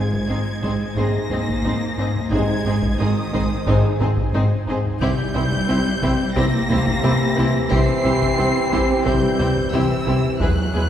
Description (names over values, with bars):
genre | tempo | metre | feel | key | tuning
cinematic, suspense film score | 89 BPM | 4/4 | straight | unclear | A4 = 439 Hz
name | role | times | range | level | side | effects
warm studio violin section | melody | 0.0-10.9 s | Eb6 to C7 | -28 LUFS | left 2 dB | none
rich studio violin section | second line | 0.0-10.8 s | G4 to C5 | -31 LUFS | left 1 dB | none
rich studio viola section | accompaniment | 0.0-10.8 s | G#3 to E4 | -27 LUFS | equal | none
soft additive organ-like pad | sustained chords | 0.0-10.9 s | B3 to Ab5 | -33 LUFS | equal | none
rubbery square bass | riff | 0.0-10.9 s | E2 to C4 | -24 LUFS | equal | none
rich studio cello section | bass | 0.0-10.9 s | Eb3 to C4 | -26 LUFS | right 1 dB | none
warm studio double bass section | bass | 0.0-10.8 s | Ab1 to E2 | -25 LUFS | right 1 dB | none
taiko ensemble | drums | 0.1-10.9 s | none | -27 LUFS | equal | none
clear trombone section | sustained chords | 1.0-10.9 s | B2 to Ab3 | -29 LUFS | right 3 dB | none
mellow French horn section | sustained chords | 1.0-10.9 s | G#3 to G#4 | -26 LUFS | left 2 dB | none
room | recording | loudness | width
wet scoring stage reverb, RT60 1.8 s | heard from further back in the room | -17 LUFS | side -10 dB against mid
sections
0.0-10.9 A section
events
none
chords
0.0 Ab; 5.0 C